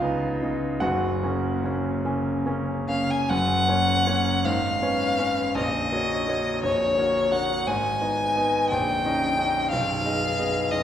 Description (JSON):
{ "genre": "classical, romantic duo for violin and grand piano", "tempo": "46-61 BPM (dotted quarters)", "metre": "6/8", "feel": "rubato", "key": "F# major", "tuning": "A4 = 439 Hz", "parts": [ { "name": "bright grand piano", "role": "accompaniment", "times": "0.0-10.8 s", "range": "A#0 to F#5", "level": "-24 LUFS", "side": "equal", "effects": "none" }, { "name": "rich violin", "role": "melody", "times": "2.9-10.8 s", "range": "C#5 to G#5", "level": "-24 LUFS", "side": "left 1 dB", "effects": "none" } ], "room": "wet scoring stage reverb, RT60 2.0 s", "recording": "heard from further back in the room", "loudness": "-22 LUFS", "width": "side -10 dB against mid", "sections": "0.0-3.3 A section; 3.3-10.8 B section", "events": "none", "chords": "0.0 C#9; 0.8 F#; 4.5 C#7/G#; 5.6 F#/A#; 7.7 G#m; 8.7 D#7/A#; 9.7 G#m/B" }